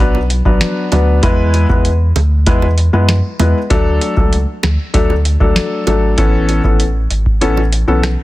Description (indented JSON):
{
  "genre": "dancehall",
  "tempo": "97 BPM",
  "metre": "4/4",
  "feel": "straight",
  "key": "A major",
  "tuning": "A4 = 440 Hz",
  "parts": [
    { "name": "dark grand piano", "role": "accompaniment", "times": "0.0-8.1 s", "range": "E3 to B4", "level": "-16 LUFS", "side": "left 2 dB", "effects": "none" },
    { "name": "saturated sub bass", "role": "bass", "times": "0.0-8.2 s", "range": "G#1 to F#2", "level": "-14 LUFS", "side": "equal", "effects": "none" },
    { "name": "bongos", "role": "percussion", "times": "0.1-7.7 s", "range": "none", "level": "-23 LUFS", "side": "right 9 dB", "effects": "none" },
    { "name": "booming analog drum machine", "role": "drums", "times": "0.3-8.2 s", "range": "hi-hat, kick drum, rim click, snare drum", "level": "-15 LUFS", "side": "equal", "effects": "vintage 12-bit sampler grit" }
  ],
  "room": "little or no reverb",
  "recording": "dense, heavily limited modern master",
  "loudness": "-11 LUFS",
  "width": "side -17 dB against mid",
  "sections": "0.0-8.2 A section",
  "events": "kick muted 7.4-8.2",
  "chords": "0.0 Bm; 1.2 E; 3.7 D; 6.2 Aadd9"
}